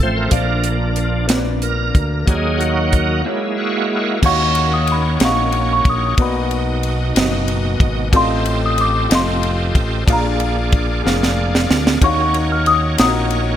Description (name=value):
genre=slow gospel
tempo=62 BPM (dotted quarters)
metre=6/8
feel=straight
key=Eb minor from 4.2 s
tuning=A4 = 441 Hz
part: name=warm concert grand piano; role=accompaniment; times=0.0-13.6 s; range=A2 to F5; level=-24 LUFS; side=left 2 dB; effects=wide subtle chorus
part: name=bright tonewheel organ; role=sustained chords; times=0.0-13.6 s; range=B2 to D#5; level=-22 LUFS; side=right 2 dB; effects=slow rotary speaker, overdrive, chorus vibrato
part: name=fingered electric bass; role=bass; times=0.0-13.6 s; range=F1 to Eb2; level=-20 LUFS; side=equal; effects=none
part: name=tight funk drum kit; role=drums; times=0.3-13.5 s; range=crash cymbal, hi-hat, kick drum, ride cymbal, snare drum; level=-19 LUFS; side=equal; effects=none
part: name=small celesta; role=melody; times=4.3-13.6 s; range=D5 to F6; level=-19 LUFS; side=left 1 dB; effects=analog chorus, digital delay
room=moderate plate reverb, RT60 2.7 s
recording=bright 1980s-style digital production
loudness=-14 LUFS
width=side -10 dB against mid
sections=0.0-4.2 A section; 4.2-13.6 B section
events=tonewheel organ solo 0.0-4.2; break 3.3-4.2; drum fill 11.0-12.0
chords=0.3 Bb; 2.3 Ebm; 3.3 Gb7; 4.2 Ebm9; 6.2 Bmaj7; 8.1 F9/A; 10.1 Bb7; 12.0 Ebm9